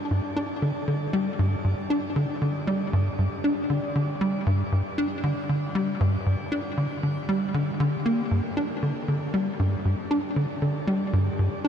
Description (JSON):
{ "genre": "ambient", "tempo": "117 BPM", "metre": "4/4", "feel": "straight", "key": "G minor", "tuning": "A4 = 440 Hz", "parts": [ { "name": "tight sequencer bass", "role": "solo", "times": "0.1-11.7 s", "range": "G2 to D4", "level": "-23 LUFS", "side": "equal", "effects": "wide subtle chorus, ping-pong delay" } ], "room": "wet shimmer reverb, RT60 7.7 s", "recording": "dark, warm production", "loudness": "-23 LUFS", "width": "side -8 dB against mid", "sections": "0.0-11.7 A section", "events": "none", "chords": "none" }